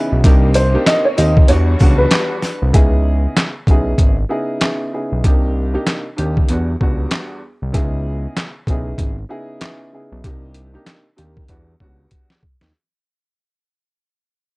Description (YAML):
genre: hip hop, boom-bap hip-hop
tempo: 96 BPM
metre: 4/4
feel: swing 59% on 16ths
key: unclear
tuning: A4 = 440 Hz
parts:
  - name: dark upright piano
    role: melody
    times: 0.0-2.7 s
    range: B4 to Eb5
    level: -18 LUFS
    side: equal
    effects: high-pass filter, low-pass filter, analog delay
  - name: dark upright piano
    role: accompaniment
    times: 0.0-12.4 s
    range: E2 to G#4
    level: -22 LUFS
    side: equal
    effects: cassette tape, high-pass filter, low-pass filter
  - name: warm studio string section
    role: sustained chords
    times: 0.0-2.7 s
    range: C3 to F#4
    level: -28 LUFS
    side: left 1 dB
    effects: high-pass filter, low-pass filter
  - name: fat analog bass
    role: bass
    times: 0.1-12.7 s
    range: G#1 to E2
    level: -17 LUFS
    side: equal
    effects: none
  - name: boom bap sampler-style drum kit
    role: drums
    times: 0.2-12.7 s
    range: handclaps, hi-hat, kick drum, shaker, snare drum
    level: -14 LUFS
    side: equal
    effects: none
  - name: sleigh bells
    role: percussion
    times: 0.2-2.6 s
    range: none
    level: -34 LUFS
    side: left 1 dB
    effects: none
room: little or no reverb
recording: dry, gritty hardware recording, cassette tape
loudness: -13 LUFS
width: side -24 dB against mid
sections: 0.0-2.7 A section; 2.7-12.7 B section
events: fade-out 2.7-12.7; drum fill 11.5-12.7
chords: 0.2 Cm9; 1.5 Em9; 2.7 C#m9; 5.2 Cm9; 6.5 Em9; 7.7 C#m9; 10.2 Cm9; 11.5 Em9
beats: | 0.24 0.87 1.49 2.12 | 2.74 3.37 3.99 4.62 | 5.24 5.87 6.49 7.12 | 7.74 8.37 8.99 9.62 | 10.24 10.87 11.49 12.12